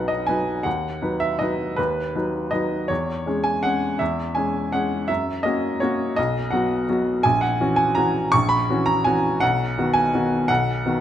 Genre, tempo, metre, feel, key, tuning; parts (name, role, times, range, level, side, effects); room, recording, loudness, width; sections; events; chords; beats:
classical, piano waltz; 165 BPM; 3/4; uneven beats, rubato; B major; A4 = 440 Hz
clear upright piano; solo; 0.0-11.0 s; A#1 to C#6; -20 LUFS; equal
moderate recital hall reverb, RT60 1.8 s; close, detailed microphones; -20 LUFS; side -10 dB against mid
0.0-11.0 A section
0.0 B; 0.7 B/D#; 2.9 C#m/E; 5.1 F#7; 6.2 B; 7.2 F#7/A#; 9.4 B
0.29 | 0.66 1.02 1.40 | 1.78 2.15 2.53 | 2.90 3.26 3.64 | 4.00 4.36 4.73 | 5.09 5.44 5.82 | 6.17 6.52 6.88 | 7.24 7.60 7.97 | 8.33 8.68 9.05 | 9.41 9.77 10.13 | 10.49 10.85